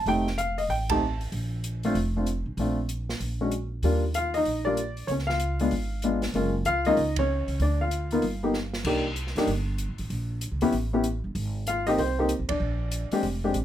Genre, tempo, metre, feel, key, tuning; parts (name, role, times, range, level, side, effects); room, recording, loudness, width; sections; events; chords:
jazz piano trio; 191 BPM; 4/4; swing 63% on 8ths; Bb major, Eb major from 3.8 s; A4 = 436 Hz
dark baby grand piano; melody; 0.0-13.5 s; G3 to A5; -26 LUFS; left 1 dB
upright bass; bass; 0.0-13.6 s; F1 to G2; -29 LUFS; right 1 dB
open jazz drum kit; drums; 0.1-13.6 s; crash cymbal, hi-hat, kick drum, ride cymbal, snare drum; -36 LUFS; right 2 dB
light reverb; -24 LUFS; side -11 dB against mid
0.0-3.8 A section; 3.8-13.6 B section
band accent 0.9, 7.1, 12.5; drum fill 8.5-8.9
0.1 F7; 1.3 Bb5; 3.2 N.C.; 3.8 Ebmaj7; 5.1 Db7b9; 6.3 Gbmaj9; 7.6 Dm; 8.2 G7(no3); 8.9 Cm7; 10.1 Bbm; 10.7 A7(no3); 11.4 Ab; 12.6 Bb